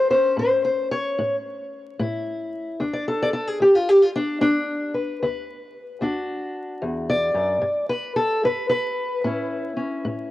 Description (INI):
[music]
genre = acoustic country blues, solo or duo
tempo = 74 BPM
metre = 4/4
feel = swing 65% on 8ths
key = D major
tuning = A4 = 440 Hz
[part]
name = fingerpicked steel-string acoustic guitar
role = solo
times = 0.0-10.3 s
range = D2 to D5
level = -20 LUFS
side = left 1 dB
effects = cassette tape
[sound]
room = light reverb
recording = home recording on cassette, vinyl crackle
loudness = -20 LUFS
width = side -15 dB against mid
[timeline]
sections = 0.0-10.3 A section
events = steel-string acoustic guitar solo 0.0-10.3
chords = 0.0 A; 2.8 D5; 6.0 D; 7.6 N.C.; 9.2 A